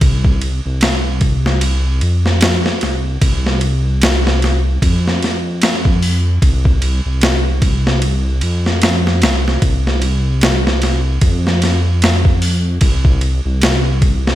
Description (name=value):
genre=trip hop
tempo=75 BPM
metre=4/4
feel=swing 58% on 16ths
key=unclear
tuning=A4 = 441 Hz
part: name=dark detuned saw bass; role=bass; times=0.0-14.3 s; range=C2 to F2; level=-15 LUFS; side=equal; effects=none
part: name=boom bap sampler-style drum kit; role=drums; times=0.0-14.3 s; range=hi-hat, kick drum, ride cymbal, snare drum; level=-15 LUFS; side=equal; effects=none
room=little or no reverb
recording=none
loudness=-12 LUFS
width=side -14 dB against mid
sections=0.0-14.3 A section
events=none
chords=none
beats=| 0.01 0.81 1.61 2.42 | 3.21 4.01 4.82 5.62 | 6.42 7.21 8.02 8.81 | 9.62 10.41 11.21 12.02 | 12.81 13.62